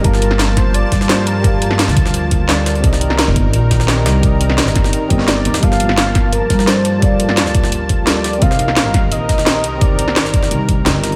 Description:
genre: liquid drum and bass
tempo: 172 BPM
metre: 4/4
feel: straight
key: G minor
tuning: A4 = 440 Hz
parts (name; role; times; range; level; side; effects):
- warm velvety synth lead; melody; 0.0-1.8, 5.3-10.5 s; Bb4 to F5; -24 LUFS; equal; chorus, tape echo
- tine electric piano; accompaniment; 0.0-11.2 s; G3 to A5; -24 LUFS; equal; analog chorus, delay
- lush unison pad; sustained chords; 0.0-11.2 s; Eb3 to A5; -25 LUFS; equal; chorus, sidechain pumping
- upright bass; bass; 0.0-11.2 s; G1 to G2; -20 LUFS; equal; tube saturation
- drum and bass drum kit; drums; 0.0-11.1 s; hi-hat, snare drum; -21 LUFS; equal; none
- electronic kick drum; drums; 0.0-10.8 s; none; -18 LUFS; equal; overdrive
- jungle sampler-style drum kit; drums; 0.0-11.2 s; hi-hat, snare drum; -26 LUFS; equal; high-pass filter on hats, high-pass filter on snare
room: light reverb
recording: none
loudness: -14 LUFS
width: mono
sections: 0.0-11.2 A section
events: none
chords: 0.0 Gm9; 2.8 Cm9; 5.6 Gm9; 8.4 Cm9

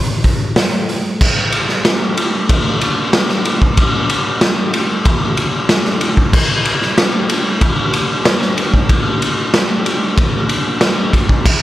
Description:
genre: rock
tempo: 94 BPM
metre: 4/4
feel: straight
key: none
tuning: none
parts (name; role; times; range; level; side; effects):
- raw garage drum kit; drums; 0.2-11.6 s; crash cymbal, hi-hat, kick drum, ride cymbal, snare drum; -12 LUFS; equal; none
room: little or no reverb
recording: none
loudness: -12 LUFS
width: side -15 dB against mid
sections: 0.0-1.2 A section; 1.2-11.6 B section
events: none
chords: none

